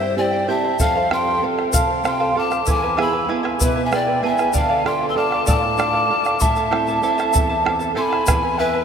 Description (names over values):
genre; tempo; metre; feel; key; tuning
andean folk, Andean ensemble; 64 BPM (dotted quarters); 6/8; straight; unclear; A4 = 440 Hz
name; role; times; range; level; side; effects
mellow quena; melody; 0.0-8.8 s; E5 to E6; -22 LUFS; equal; none
breathy bright pan flute; second line; 0.0-8.8 s; B4 to C6; -24 LUFS; left 4 dB; none
charango; accompaniment; 0.0-8.8 s; E4 to A5; -24 LUFS; right 2 dB; none
nylon-string guitar; accompaniment; 0.0-8.8 s; E2 to A4; -25 LUFS; right 4 dB; none
bombo; percussion; 0.8-8.8 s; none; -24 LUFS; equal; none
tube shaker; percussion; 0.8-8.4 s; none; -28 LUFS; left 8 dB; none
room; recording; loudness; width
wet huge ambient reverb, RT60 7.9 s; in a vast, echoing space; -16 LUFS; side -7 dB against mid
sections
0.0-8.3 A section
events
none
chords
0.0 C; 0.8 F; 2.7 E; 4.5 Dm; 6.4 Am; 8.3 E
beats
| 0.80 1.74 | 2.67 3.60 | 4.54 5.47 | 6.41 7.34 | 8.27